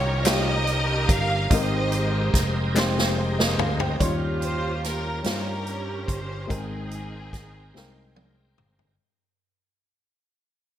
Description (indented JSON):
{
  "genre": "slow gospel",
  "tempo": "48 BPM (dotted quarters)",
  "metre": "6/8",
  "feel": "straight",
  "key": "Ab major",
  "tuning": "A4 = 440 Hz",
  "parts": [
    { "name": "warm studio string section", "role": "melody", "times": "0.0-8.2 s", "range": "C4 to F5", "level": "-28 LUFS", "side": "right 2 dB", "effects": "none" },
    { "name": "dark upright piano", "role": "accompaniment", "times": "0.0-9.0 s", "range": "Ab2 to C6", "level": "-30 LUFS", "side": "left 3 dB", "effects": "none" },
    { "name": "bright tonewheel organ", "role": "sustained chords", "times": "0.0-9.0 s", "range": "G3 to G5", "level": "-34 LUFS", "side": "right 2 dB", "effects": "overdrive, chorus vibrato, slow rotary speaker" },
    { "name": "fingered electric bass", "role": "bass", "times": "0.0-9.0 s", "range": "F1 to G2", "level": "-28 LUFS", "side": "equal", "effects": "none" },
    { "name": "swinging big-band drum kit", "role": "drums", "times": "0.2-9.0 s", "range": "hi-hat, kick drum, snare drum, toms", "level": "-25 LUFS", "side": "equal", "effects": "gated reverb" },
    { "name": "group handclap", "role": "percussion", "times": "0.3-3.1 s", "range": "none", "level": "-32 LUFS", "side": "left 4 dB", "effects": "none" }
  ],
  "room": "light reverb, small room reverb",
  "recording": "bright 1980s-style digital production",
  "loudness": "-22 LUFS",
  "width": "side -11 dB against mid",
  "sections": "0.0-4.0 A section; 4.0-9.0 B section",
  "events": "drum fill 2.8-4.0, 7.8-9.0; fade-out 4.0-9.0",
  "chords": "0.0 Eb13; 1.5 Abmaj9; 4.0 Eb13; 6.5 Abmaj9"
}